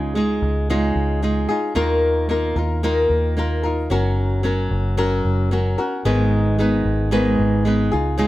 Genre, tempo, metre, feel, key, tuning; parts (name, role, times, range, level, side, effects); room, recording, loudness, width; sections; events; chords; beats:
pop; 112 BPM; 4/4; swing 55% on 16ths; A4 = 443 Hz
flamenco guitar; accompaniment; 0.0-8.3 s; G#2 to B4; -19 LUFS; equal
vintage muted fingered electric bass; bass; 0.0-8.3 s; F#1 to D#2; -21 LUFS; equal
light reverb; -17 LUFS; side -16 dB against mid
0.0-8.3 A section
0.0 C#add9; 1.8 D#sus2; 3.9 F#; 6.1 G#m
0.15 0.69 1.22 | 1.76 2.30 2.83 3.37 | 3.91 4.45 4.98 5.52 | 6.05 6.59 7.13 7.67 | 8.20